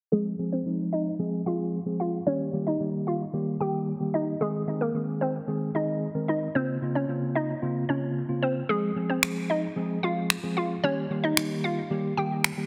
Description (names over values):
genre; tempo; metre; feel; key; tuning
dance-pop; 112 BPM; 4/4; straight; unclear; A4 = 440 Hz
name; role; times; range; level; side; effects
hollow square pluck; melody; 0.1-12.4 s; Ab3 to G5; -31 LUFS; equal; chorus, low-pass filter, delay
mellow tine electric piano; accompaniment; 0.1-12.7 s; Db3 to Bb4; -31 LUFS; equal; low-pass filter
electronic finger snaps; drums; 9.2-12.6 s; none; -28 LUFS; equal; none
room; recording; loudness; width
moderate lush hall reverb, RT60 1.9 s; heavily compressed radio sound, multiband compression; -28 LUFS; mono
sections
0.1-12.7 A section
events
filter sweep 0.1-12.7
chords
0.1 Fm; 2.3 Eb; 4.4 Ab; 6.5 Bbmadd9; 8.7 Fm; 10.8 Eb